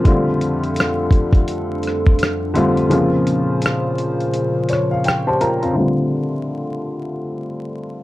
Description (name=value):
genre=lo-fi hip hop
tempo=84 BPM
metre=4/4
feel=swing 61% on 16ths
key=F major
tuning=A4 = 440 Hz
part: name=dark upright piano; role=accompaniment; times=0.0-8.0 s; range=Db3 to Bb5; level=-18 LUFS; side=left 1 dB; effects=low-pass filter
part: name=warbly tape-like pad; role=sustained chords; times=0.0-5.7 s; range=F2 to C5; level=-24 LUFS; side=right 1 dB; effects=chorus, built-in reverb
part: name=dusty soul sampler-style drum kit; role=drums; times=0.1-5.8 s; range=hi-hat, kick drum, rim click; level=-16 LUFS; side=equal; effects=none
room=moderate small room reverb, RT60 0.6 s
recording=dark, warm production, vinyl crackle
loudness=-16 LUFS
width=side -17 dB against mid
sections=0.0-5.8 A section; 5.8-8.0 B section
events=kick muted 2.9-5.8; upright piano fill 4.3-5.8; filter sweep on upright piano 5.8-8.0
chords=0.1 F6; 2.9 Bbmadd9; 5.8 F6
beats=| 0.05 0.77 1.48 2.19 | 2.91 3.62 4.34 5.05 | 5.77 6.48 7.19 7.91